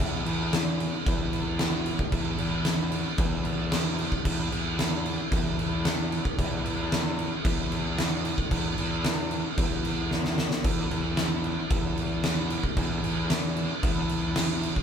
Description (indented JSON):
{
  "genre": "post-rock",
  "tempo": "113 BPM",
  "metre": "4/4",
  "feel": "straight",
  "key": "unclear",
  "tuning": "A4 = 440 Hz",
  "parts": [
    { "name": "fuzz picked electric bass", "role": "bass", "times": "0.0-14.7 s", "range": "E2", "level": "-30 LUFS", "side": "left 1 dB", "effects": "overdrive" },
    { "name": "oversized low-tuned drum kit", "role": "drums", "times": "0.0-14.8 s", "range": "crash cymbal, kick drum, snare drum", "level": "-27 LUFS", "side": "equal", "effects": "none" }
  ],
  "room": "moderate studio reverb, RT60 0.6 s",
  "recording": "band playing live in one room",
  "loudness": "-25 LUFS",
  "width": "side -8 dB against mid",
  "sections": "0.0-14.8 A section",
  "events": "drum fill 10.1-10.6",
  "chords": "none",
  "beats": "0.52 1.06 1.59 | 2.12 2.66 3.19 3.72 | 4.25 4.79 5.32 5.85 | 6.38 6.92 7.45 7.98 | 8.51 9.04 9.58 10.11 | 10.64 11.17 11.71 12.24 | 12.77 13.30 13.83 14.36"
}